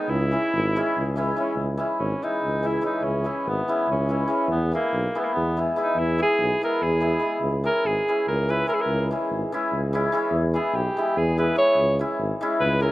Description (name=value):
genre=balkan folk, Balkan wedding band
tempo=288 BPM (eighths)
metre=7/8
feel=straight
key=C# minor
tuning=A4 = 441 Hz
part: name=warm tenor saxophone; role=melody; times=0.0-12.9 s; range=A#3 to C#5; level=-24 LUFS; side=equal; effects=slapback echo
part: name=hammered dulcimer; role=accompaniment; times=0.0-12.9 s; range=D#3 to E4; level=-25 LUFS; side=equal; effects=slapback echo
part: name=mellow tuba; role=bass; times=0.1-12.9 s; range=G#1 to E2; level=-26 LUFS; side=equal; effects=none
room=little or no reverb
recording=recorded outdoors, with no room sound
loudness=-21 LUFS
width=side -16 dB against mid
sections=0.0-1.6 A section; 1.6-12.9 B section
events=tenor saxophone solo 1.6-12.9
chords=0.1 C#m; 4.5 E; 7.4 C#m; 10.3 E; 11.8 C#m